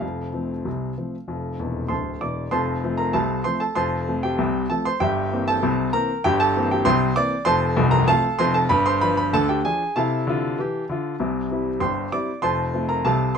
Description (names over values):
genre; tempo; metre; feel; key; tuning
ragtime piano; 97 BPM; 2/4; straight; F major; A4 = 436 Hz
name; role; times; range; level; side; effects
warm grand piano; solo; 0.0-13.4 s; C1 to D6; -20 LUFS; equal; none
room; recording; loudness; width
light reverb; minimal, uncompressed stereo recording; -20 LUFS; side -6 dB against mid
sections
0.0-2.5 A section; 2.5-13.4 B section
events
grand piano fill 1.6-2.5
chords
0.0 F; 5.0 C7/G; 7.5 F; 8.7 G7; 9.9 F/C; 11.2 C; 12.4 F